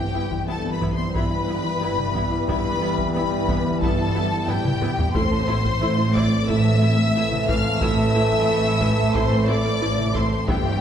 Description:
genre	cinematic, hybrid orchestral and electronic film score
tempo	90 BPM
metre	4/4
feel	straight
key	unclear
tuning	A4 = 440 Hz
part	warm symphonic violin section	melody	0.0-10.8 s	G5 to F6	-28 LUFS	left 3 dB	none
part	warm symphonic violin section	second line	0.0-10.8 s	G4 to F5	-29 LUFS	left 3 dB	none
part	dark French horn section	sustained chords	0.0-10.8 s	E3 to G4	-29 LUFS	left 1 dB	none
part	warbly tape-like pad	sustained chords	0.1-10.8 s	E3 to G5	-31 LUFS	right 1 dB	none
part	warm trombone section	sustained chords	0.0-10.8 s	B2 to A3	-30 LUFS	right 1 dB	none
part	thumb-piano-like synth pluck	arpeggios	0.0-10.8 s	E3 to A4	-32 LUFS	left 1 dB	none
part	dark studio cello section	bass	0.0-10.8 s	G2 to A2	-26 LUFS	equal	none
part	rich symphonic double bass section	bass	0.0-10.8 s	G1 to A1	-26 LUFS	right 2 dB	none
part	warm symphonic viola section	accompaniment	0.1-10.6 s	E3 to E4	-31 LUFS	right 1 dB	none
part	taiko ensemble	drums	0.3-10.8 s	none	-28 LUFS	equal	none
room	wet recital hall reverb, RT60 1.3 s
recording	recorded in a church or concert hall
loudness	-19 LUFS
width	side -8 dB against mid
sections	0.0-10.8 A section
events	drum fill 4.5-5.1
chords	0.0 Em/G; 5.1 Am

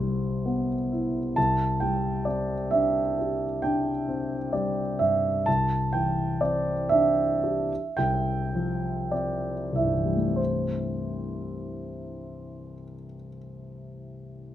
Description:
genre	classical, impressionist solo piano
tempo	30-45 BPM (dotted quarters)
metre	9/8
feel	rubato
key	C major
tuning	A4 = 440 Hz
part	clear concert grand piano	solo	0.0-14.5 s	C2 to A5	-25 LUFS	equal	none
room	light reverb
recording	none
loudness	-24 LUFS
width	side -12 dB against mid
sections	0.0-10.4 A section; 10.4-14.5 B section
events	slowing down 0.4-10.4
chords	0.0 Cmaj7; 1.4 Cadd9; 7.7 F5/C; 10.4 C6

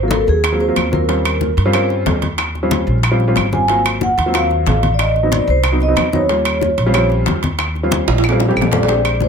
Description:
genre	Afro-Cuban jazz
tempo	185 BPM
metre	4/4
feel	straight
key	Eb mixolydian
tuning	A4 = 440 Hz
part	vibraphone with medium mallets	melody	0.0-9.3 s	Ab4 to Ab5	-18 LUFS	right 1 dB	plate reverb
part	warm upright piano	accompaniment	0.0-9.3 s	Gb3 to G4	-19 LUFS	equal	none
part	upright bass	bass	0.0-9.3 s	Ab1 to G2	-18 LUFS	equal	none
part	bongos	percussion	0.1-9.3 s	none	-25 LUFS	left 10 dB	none
part	congas	percussion	0.1-9.3 s	none	-24 LUFS	left 2 dB	none
part	timbales	percussion	0.1-9.2 s	none	-23 LUFS	right 6 dB	none
part	claves	percussion	0.4-9.2 s	none	-24 LUFS	right 1 dB	none
room	light reverb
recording	close, detailed microphones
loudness	-13 LUFS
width	side -6 dB against mid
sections	0.0-9.3 A section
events	drum fill 8.1-8.9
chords	0.0 Ab13; 1.1 Eb13; 3.7 Ab13; 5.0 Adim7; 6.3 Eb13

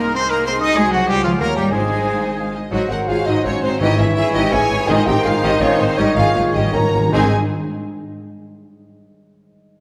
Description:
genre	classical, dramatic, fast romantic movement for symphony orchestra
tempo	150-191 BPM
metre	3/4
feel	straight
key	Ab major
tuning	A4 = 440 Hz
part	clear studio violin section	melody	0.0-7.3 s	Ab4 to Bb5	-29 LUFS	equal	none
part	mellow hollow flute section	second line	0.0-7.3 s	C5 to Eb6	-27 LUFS	equal	none
part	rich symphonic violin section	second line	0.0-7.3 s	Eb4 to Eb6	-28 LUFS	equal	none
part	warm oboe	second line	0.0-7.3 s	F4 to Eb5	-29 LUFS	equal	none
part	clear symphonic viola section	accompaniment	0.0-7.3 s	Eb3 to Db5	-28 LUFS	equal	none
part	mellow French horn section	sustained chords	0.0-7.3 s	Ab3 to Db5	-25 LUFS	equal	none
part	concert harp	arpeggios	0.0-7.3 s	Ab2 to Eb5	-31 LUFS	equal	none
part	bright trumpet	stabs	0.0-2.5 s	F4 to Eb5	-24 LUFS	equal	none
part	rich symphonic cello section	bass	0.0-7.3 s	Ab2 to Eb4	-26 LUFS	equal	none
part	rich symphonic double bass section	bass	0.0-7.3 s	Ab1 to Eb2	-27 LUFS	equal	none
part	timpani	percussion	1.7-7.3 s	Ab2	-26 LUFS	equal	none
part	warm bassoon	accompaniment	2.7-7.3 s	Eb3 to Gb3	-27 LUFS	equal	none
room	wet scoring stage reverb, RT60 1.9 s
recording	none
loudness	-17 LUFS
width	mono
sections	0.0-2.7 A section; 2.7-7.1 B section; 7.1-8.2 C section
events	slowing down 4.3-7.1; timpani fill 6.0-7.1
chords	0.0 Ab/C; 0.8 Ab7/C; 1.1 Db; 1.4 Eb9; 1.7 Ab; 2.7 Ab7; 3.8 Dbm/Ab; 4.9 Ab; 6.0 Eb7/Ab; 7.1 Ab

